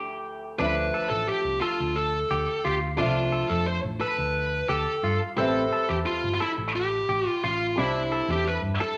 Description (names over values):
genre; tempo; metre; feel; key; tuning
progressive instrumental, progressive; 176 BPM (eighths); 7/8; straight; D dorian; A4 = 439 Hz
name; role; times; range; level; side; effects
warm grand piano; accompaniment; 0.0-9.0 s; D2 to E5; -35 LUFS; equal; none
semi-hollow electric guitar; arpeggios; 0.0-9.0 s; C4 to A4; -33 LUFS; equal; spring reverb
high-gain lead guitar; melody; 0.6-9.0 s; E4 to C5; -29 LUFS; equal; distortion
hollow-body short-scale fingered electric bass; bass; 0.6-8.8 s; G1 to G2; -33 LUFS; equal; none
room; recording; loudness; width
wet large studio reverb, RT60 1.0 s; none; -26 LUFS; mono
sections
0.6-9.0 A section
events
break 0.0-0.6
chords
0.0 Dm7; 0.6 Dmadd9; 5.4 Am7; 7.8 Cadd9